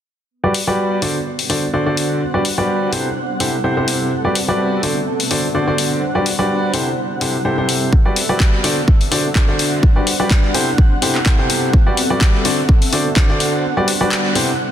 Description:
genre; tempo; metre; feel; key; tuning
piano house; 126 BPM; 4/4; swing 54% on 16ths; G major; A4 = 440 Hz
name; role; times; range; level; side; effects
granular cloud pad; texture; 0.9-14.7 s; D4 to F#5; -23 LUFS; right 1 dB; built-in reverb, sidechain pumping
clear upright piano; riff; 0.4-14.5 s; C3 to D5; -18 LUFS; equal; sidechain pumping, low-pass filter, tape echo
house drum kit; drums; 0.5-14.5 s; handclaps, hi-hat; -21 LUFS; left 3 dB; none
electronic kick drum; drums; 7.9-13.3 s; none; -12 LUFS; equal; none
room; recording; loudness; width
moderate lush hall reverb, RT60 1.9 s; dense, heavily limited modern master; -14 LUFS; side -10 dB against mid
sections
0.3-14.7 A section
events
break 13.6-14.7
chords
0.3 Gmaj7; 1.0 D7; 2.2 Gmaj7; 2.9 C6; 4.1 Gmaj7; 4.8 D7; 6.0 Gmaj7; 6.7 C6; 7.9 Gmaj7; 8.6 D7; 9.8 Gmaj7; 10.5 C6; 11.7 Gmaj7; 12.4 D7; 13.6 Gmaj7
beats
| 0.31 0.78 1.26 1.74 | 2.21 2.69 3.16 3.64 | 4.12 4.59 5.07 5.54 | 6.02 6.50 6.97 7.45 | 7.93 8.40 8.88 9.35 | 9.83 10.31 10.78 11.26 | 11.73 12.21 12.69 13.16 | 13.64 14.12 14.59

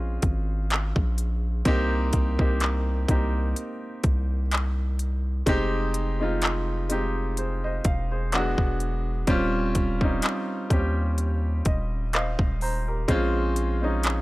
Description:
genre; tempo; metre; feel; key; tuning
contemporary R&B; 63 BPM; 4/4; swing 54% on 16ths; F minor; A4 = 440 Hz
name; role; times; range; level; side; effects
clear baby grand piano; accompaniment; 0.0-14.2 s; F#3 to Bb5; -28 LUFS; equal; none
long sustained 808-style bass; bass; 0.0-14.2 s; Eb1 to Eb2; -26 LUFS; equal; none
trap drum kit; drums; 0.2-14.2 s; handclaps, hi-hat, kick drum, rim click; -25 LUFS; equal; none
room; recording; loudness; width
little or no reverb; dry, gritty hardware recording; -23 LUFS; side -19 dB against mid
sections
0.0-14.2 A section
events
grand piano fill 11.2-13.1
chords
0.0 Bbm7; 1.7 Cm7; 5.5 Fm7; 8.3 E9; 9.3 Eb13; 13.1 Bbm7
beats
0.70 | 1.66 2.61 3.56 4.51 | 5.47 6.42 7.37 8.32 | 9.28 10.23 11.18 12.13 | 13.09 14.04

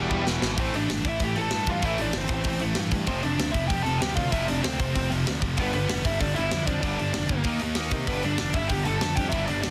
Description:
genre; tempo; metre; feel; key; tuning
punk rock; 192 BPM; 4/4; straight; A minor; A4 = 441 Hz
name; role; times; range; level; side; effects
biting lead guitar; melody; 0.0-9.7 s; G3 to A5; -31 LUFS; equal; overdrive
biting overdriven guitar; riff; 0.0-9.7 s; E2 to D#4; -35 LUFS; equal; none
distorted electric guitar; riff; 0.0-9.7 s; E2 to D#4; -36 LUFS; equal; none
heavy high-gain guitar; riff; 0.0-9.7 s; E2 to D#4; -36 LUFS; equal; distortion
fuzz picked electric bass; bass; 0.0-9.7 s; E1 to C3; -33 LUFS; equal; overdrive
tight metal drum kit; drums; 0.1-9.7 s; hi-hat, kick drum, snare drum; -32 LUFS; equal; soft clipping on kick
room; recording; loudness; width
light reverb; dense, heavily limited modern master; -26 LUFS; mono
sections
0.6-9.7 A section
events
drum fill 0.3-0.6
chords
0.0 Em; 0.6 Am; 3.1 F; 5.6 G; 7.5 D#5; 8.1 G5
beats
0.27 | 0.58 0.89 1.20 1.52 | 1.83 2.14 2.46 2.77 | 3.08 3.39 3.71 4.02 | 4.33 4.64 4.96 5.27 | 5.58 5.89 6.21 6.52 | 6.83 7.14 7.46 7.77 | 8.08 8.39 8.71 9.02 | 9.33 9.65

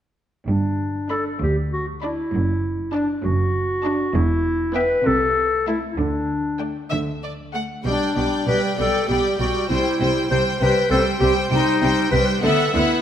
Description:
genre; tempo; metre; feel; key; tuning
cinematic, playful, whimsical film cue; 65 BPM (dotted quarters); 6/8; straight; G major; A4 = 440 Hz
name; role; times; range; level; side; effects
mellow clarinet; second line; 0.5-13.0 s; D4 to C5; -22 LUFS; left 1 dB; none
rich studio cello section; bass; 0.5-12.8 s; D2 to D3; -26 LUFS; right 2 dB; none
rich studio double bass section; bass; 0.5-12.8 s; E1 to D2; -26 LUFS; right 2 dB; none
rich studio violin section; melody; 1.1-13.0 s; F#5 to B5; -27 LUFS; left 3 dB; none
clear studio violin section; second line; 1.1-13.0 s; C5 to F#5; -27 LUFS; left 3 dB; none
rich studio viola section; accompaniment; 1.1-13.0 s; G3 to D4; -27 LUFS; right 2 dB; none
room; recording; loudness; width
moderate scoring stage reverb, RT60 2.0 s; none; -18 LUFS; side -10 dB against mid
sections
0.5-13.0 A section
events
none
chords
0.5 G; 2.3 D/F#; 4.1 Em; 5.1 Am/C; 6.0 Dsus4; 7.8 G/B; 9.7 C; 12.4 D69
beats
| 0.47 1.41 | 2.33 3.24 | 4.14 5.06 | 5.98 6.91 | 7.85 8.78 | 9.70 10.61 | 11.51 12.43

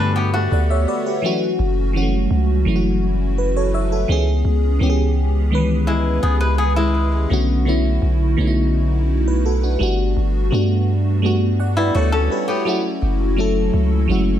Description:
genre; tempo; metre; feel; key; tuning
contemporary R&B; 84 BPM; 4/4; straight; unclear; A4 = 440 Hz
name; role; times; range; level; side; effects
FM electric piano with soft pad layer; accompaniment; 0.0-14.4 s; D3 to F#5; -20 LUFS; equal; chorus, phaser
flamenco guitar; arpeggios; 0.0-1.2, 5.9-7.3, 11.8-12.8 s; G3 to B4; -22 LUFS; left 3 dB; digital delay
long sustained 808-style bass; bass; 0.0-14.4 s; F#1 to G2; -18 LUFS; equal; none
room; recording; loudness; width
light reverb, small room ambience; none; -16 LUFS; side -10 dB against mid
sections
0.0-14.4 A section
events
none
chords
0.0 Gmaj7; 1.2 F#m7; 4.1 C#m7; 7.3 Bm7; 9.8 Gmaj7; 12.7 F#m7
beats
0.16 0.87 | 1.59 2.30 3.02 3.73 | 4.45 5.16 5.87 6.59 | 7.30 8.02 8.73 9.45 | 10.16 10.87 11.59 12.30 | 13.02 13.73

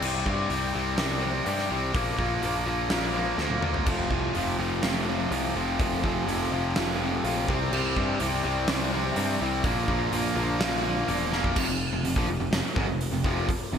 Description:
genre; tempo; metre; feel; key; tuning
hard rock; 125 BPM; 4/4; straight; F major; A4 = 441 Hz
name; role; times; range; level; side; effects
overdriven electric guitar; riff; 0.0-13.8 s; F2 to C4; -31 LUFS; right 9 dB; none
overdriven semi-hollow guitar; riff; 0.0-13.8 s; F2 to C4; -30 LUFS; left 9 dB; spring reverb
modern bright picked electric bass; bass; 0.0-13.8 s; E1 to G2; -31 LUFS; equal; none
huge arena drum kit; drums; 0.0-13.6 s; crash cymbal, hi-hat, kick drum, snare drum, toms; -30 LUFS; right 1 dB; gated reverb
crunchy overdriven guitar; riff; 3.9-13.8 s; F2 to F4; -32 LUFS; equal; lush chorus
room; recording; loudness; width
moderate plate reverb, RT60 2.1 s; bright 1980s-style digital production; -24 LUFS; side -7 dB against mid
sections
0.0-11.6 A section; 11.6-13.8 B section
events
drum fill 3.4-3.9, 11.3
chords
0.0 C5; 1.9 Bb; 3.9 F; 7.5 C; 9.6 Bb; 11.6 F5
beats
| 0.02 0.51 0.99 1.47 | 1.95 2.43 2.91 3.39 | 3.87 4.35 4.83 5.32 | 5.80 6.28 6.76 7.24 | 7.72 8.20 8.68 9.16 | 9.64 10.12 10.60 11.08 | 11.56 12.04 12.53 13.01 | 13.48

